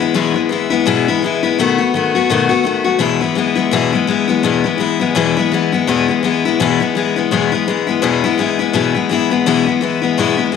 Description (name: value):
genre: rock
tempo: 168 BPM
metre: 4/4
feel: swing 58% on 8ths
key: E major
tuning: A4 = 439 Hz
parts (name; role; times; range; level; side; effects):
- picked steel-string acoustic guitar; solo; 0.0-10.6 s; E2 to F#4; -13 LUFS; left 7 dB; slapback echo
room: moderate echo chamber reverb, RT60 1.4 s, studio reverb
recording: none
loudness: -13 LUFS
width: side -6 dB against mid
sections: 0.0-4.4 A section; 4.4-10.6 B section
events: none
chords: 0.0 E; 1.6 B7; 3.0 E